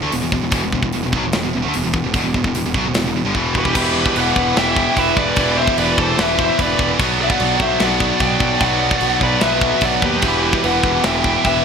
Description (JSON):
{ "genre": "heavy metal", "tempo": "148 BPM", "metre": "4/4", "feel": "straight", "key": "E minor", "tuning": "A4 = 441 Hz", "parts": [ { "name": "scooped high-gain guitar", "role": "riff", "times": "0.0-11.6 s", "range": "E2 to B3", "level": "-22 LUFS", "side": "right 10 dB", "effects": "distortion" }, { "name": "tight distorted guitar", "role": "riff", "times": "0.0-11.6 s", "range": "E2 to B3", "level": "-23 LUFS", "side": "left 11 dB", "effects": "distortion" }, { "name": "fuzz picked electric bass", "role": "bass", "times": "0.0-11.6 s", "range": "E1 to D#2", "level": "-24 LUFS", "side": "equal", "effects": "overdrive" }, { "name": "tight metal drum kit", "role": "drums", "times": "0.1-11.5 s", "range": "crash cymbal, hi-hat, kick drum, snare drum", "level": "-21 LUFS", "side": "equal", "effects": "gated reverb" }, { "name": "high-gain lead guitar", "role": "melody", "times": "3.6-11.6 s", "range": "B4 to G5", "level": "-20 LUFS", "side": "left 2 dB", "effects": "distortion" }, { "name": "high-gain lead guitar", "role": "second line", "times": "3.6-11.6 s", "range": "G4 to E5", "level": "-24 LUFS", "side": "right 3 dB", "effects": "distortion" }, { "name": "distorted electric guitar", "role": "riff", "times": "3.7-11.6 s", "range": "B2 to G4", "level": "-23 LUFS", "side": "right 1 dB", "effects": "overdrive" } ], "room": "light reverb, studio reverb", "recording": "bright 1980s-style digital production", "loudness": "-14 LUFS", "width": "side -6 dB against mid", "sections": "0.0-3.8 A section; 3.8-11.6 B section", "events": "drum fill 3.4-3.8", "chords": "0.0 E5; 3.8 Em; 7.0 Bm; 10.2 Em" }